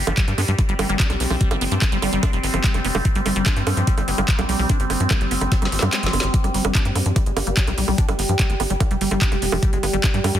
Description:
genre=psychedelic trance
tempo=146 BPM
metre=4/4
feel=straight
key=G major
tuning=A4 = 436 Hz
part: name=overtone-sweeping drone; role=sustained chords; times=0.0-10.4 s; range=G3 to G4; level=-27 LUFS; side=right 1 dB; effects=chorus, built-in reverb, sidechain pumping
part: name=tight sequencer bass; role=bass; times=0.0-10.4 s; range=F1 to G2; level=-23 LUFS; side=equal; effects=tube saturation
part: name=liquid acid bass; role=riff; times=0.1-10.4 s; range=F3 to G4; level=-26 LUFS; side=equal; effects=phaser, auto-pan, sidechain pumping, dub echo
part: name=garage drum kit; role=drums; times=0.1-10.4 s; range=bongos, handclaps, hi-hat, snare drum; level=-24 LUFS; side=right 3 dB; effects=overdrive, studio reverb
part: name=electronic kick drum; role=drums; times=0.2-10.1 s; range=none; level=-19 LUFS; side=equal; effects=overdrive, studio reverb
part: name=resonant blip pluck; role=second line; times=0.9-8.8 s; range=G3 to B3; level=-36 LUFS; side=right 3 dB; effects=none
room=light reverb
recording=dense, heavily limited modern master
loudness=-17 LUFS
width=side -11 dB against mid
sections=0.0-10.4 A section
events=drum fill 5.5-6.3; kick drops out 5.9-6.3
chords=0.0 G5

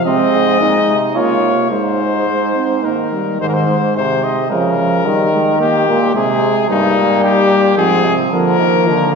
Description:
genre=classical, imitative canzona for brass ensemble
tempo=110 BPM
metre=3/4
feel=straight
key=Ab major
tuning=A4 = 442 Hz
part: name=clear trumpet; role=melody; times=0.0-9.1 s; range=Eb4 to Eb5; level=-16 LUFS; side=left 6 dB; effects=none
part: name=warm trombone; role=accompaniment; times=0.0-9.2 s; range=D3 to C4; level=-17 LUFS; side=right 1 dB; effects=none
part: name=clear euphonium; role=bass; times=0.0-9.1 s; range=G2 to F3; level=-18 LUFS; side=right 2 dB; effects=none
part: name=mellow flugelhorn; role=second line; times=0.1-3.4, 6.7-9.2 s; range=Bb3 to F4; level=-19 LUFS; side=right 5 dB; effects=none
room=wet concert hall reverb, RT60 2.1 s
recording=heard from further back in the room, nothing above 7.6 kHz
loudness=-12 LUFS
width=side -5 dB against mid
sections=0.0-3.4 A section; 3.4-9.2 B section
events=none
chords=0.1 Ab; 1.1 Bbm/Db; 1.7 Ebsus4/Ab; 2.8 Eb; 3.4 Ab; 4.5 Bbm/Db; 5.1 Eb; 6.2 Ab/C; 6.7 Eb/G; 7.8 Fm/Ab; 8.3 Bb/D

